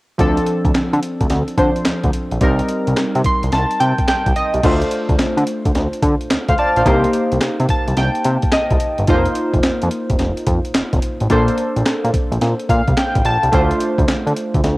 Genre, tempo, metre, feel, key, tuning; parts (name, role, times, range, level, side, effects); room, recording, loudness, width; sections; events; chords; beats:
R&B, new jack swing; 108 BPM; 4/4; swing 66% on 16ths; A4 = 440 Hz
warm analog keys; accompaniment; 0.2-14.8 s; F3 to C6; -18 LUFS; equal; chorus
fat analog bass; bass; 0.2-14.8 s; F1 to D3; -18 LUFS; equal
breakbeat sampler-style drum kit; drums; 0.2-14.8 s; crash cymbal, handclaps, hi-hat, kick drum, snare drum; -19 LUFS; equal; cassette tape
moderate spring reverb, RT60 1.6 s; home recording on cassette; -14 LUFS; side -20 dB against mid
0.2-4.6 A section; 4.6-14.8 B section
synth keys fill 3.0-4.6, 7.4-9.1, 12.4-13.5
0.2 Dm7; 2.4 Cm7; 4.6 Dm7; 6.9 Cm7; 9.1 F7sus4; 11.3 Bbmaj9; 13.5 Dm7
| 0.19 0.75 1.30 1.86 | 2.41 2.97 3.52 4.08 | 4.63 5.19 5.75 6.30 | 6.86 7.41 7.97 8.52 | 9.08 9.63 10.19 10.75 | 11.30 11.86 12.41 12.97 | 13.52 14.08 14.63